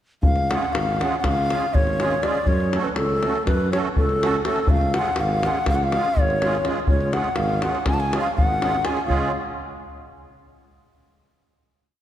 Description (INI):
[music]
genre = balkan folk, Balkan wedding band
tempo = 245 BPM (eighths)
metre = 9/8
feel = straight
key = unclear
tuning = A4 = 440 Hz
[part]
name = breathy bright low ney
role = melody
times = 0.2-9.3 s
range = A4 to A5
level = -24 LUFS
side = left 1 dB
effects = none
[part]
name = mellow tuba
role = bass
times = 0.2-9.3 s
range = G#1 to F#2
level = -26 LUFS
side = equal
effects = none
[part]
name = davul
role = percussion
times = 0.2-9.3 s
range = none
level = -24 LUFS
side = left 1 dB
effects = none
[part]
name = musette accordion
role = accompaniment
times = 0.5-9.3 s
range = G#3 to A4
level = -28 LUFS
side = right 4 dB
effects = none
[sound]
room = wet concert hall reverb, RT60 2.6 s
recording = dark, warm production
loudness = -19 LUFS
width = side -11 dB against mid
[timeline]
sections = 0.2-9.1 A section; 9.1-11.3 final chord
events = none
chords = 0.2 C#; 2.5 F#m; 4.7 C#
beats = | 0.23 0.48 0.73 0.98 1.23 1.48 1.72 1.97 2.22 | 2.46 2.71 2.96 3.21 3.45 3.70 3.94 4.19 4.43 | 4.68 4.92 5.17 5.41 5.66 5.90 6.15 6.39 6.63 | 6.88 7.12 7.37 7.61 7.86 8.10 8.34 8.59 8.83 | 9.07 9.32